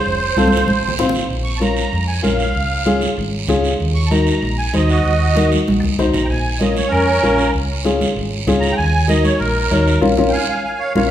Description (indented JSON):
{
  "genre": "latin, cumbia",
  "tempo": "193 BPM",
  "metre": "4/4",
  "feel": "straight",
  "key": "Bb minor",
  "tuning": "A4 = 440 Hz",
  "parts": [
    { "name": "musette accordion", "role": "melody", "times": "0.0-11.1 s", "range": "Db4 to Db6", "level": "-20 LUFS", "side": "right 2 dB", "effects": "none" },
    { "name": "hollow-body short-scale fingered electric bass", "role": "bass", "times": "0.1-11.1 s", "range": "F1 to F2", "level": "-20 LUFS", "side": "equal", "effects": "none" },
    { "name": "guiro", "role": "percussion", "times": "0.1-11.0 s", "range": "none", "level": "-27 LUFS", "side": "right 5 dB", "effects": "none" },
    { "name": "dark upright piano", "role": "accompaniment", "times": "0.4-11.1 s", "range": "C4 to Db5", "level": "-19 LUFS", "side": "left 3 dB", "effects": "none" },
    { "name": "congas", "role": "percussion", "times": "0.4-11.0 s", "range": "none", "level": "-22 LUFS", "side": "right 1 dB", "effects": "none" }
  ],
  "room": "wet recital hall reverb, RT60 1.5 s",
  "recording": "recorded in a church or concert hall",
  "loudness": "-14 LUFS",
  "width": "side -11 dB against mid",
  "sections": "0.0-1.3 A section; 1.3-11.1 B section",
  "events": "drum fill 0.4-1.3, 5.4-6.3; accordion solo 1.3-11.1; band accent 10.0-11.1",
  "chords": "0.1 F; 1.3 Bbm; 2.6 Db; 3.8 Ebm; 6.3 Bbm; 7.5 Db; 8.8 Ebm; 10.0 Bbm"
}